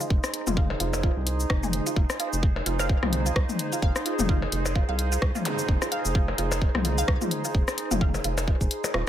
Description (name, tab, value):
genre	minimal techno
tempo	129 BPM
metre	4/4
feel	swing 57% on 16ths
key	F minor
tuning	A4 = 439 Hz
part	resonant blip pluck	riff	0.0-9.0 s	Eb4 to F5	-34 LUFS	right 3 dB	phaser, analog chorus, sidechain pumping, tape echo
part	punchy analog drum machine	drums	0.0-9.0 s	cabasa, hi-hat, rim click	-31 LUFS	left 1 dB	overdrive
part	warbly tape-like pad	texture	0.0-9.1 s	Eb4 to C5	-32 LUFS	right 2 dB	chorus, built-in reverb, sidechain pumping
part	rubbery square bass	bass	0.1-9.0 s	Eb1 to C2	-29 LUFS	equal	sidechain pumping
part	electronic kick drum	drums	0.1-8.7 s	none	-24 LUFS	equal	none
part	minimal click drum kit	percussion	0.2-8.9 s	percussion blips, rim click, toms	-30 LUFS	left 4 dB	tape echo
part	breathy flute-like synth lead	melody	4.2-4.4 s	F4	-41 LUFS	left 5 dB	none
part	zap	sound effects	5.5-5.6 s	none	-35 LUFS	equal	none
room	light reverb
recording	none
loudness	-23 LUFS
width	side -11 dB against mid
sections	0.0-9.1 A section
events	none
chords	0.0 Fm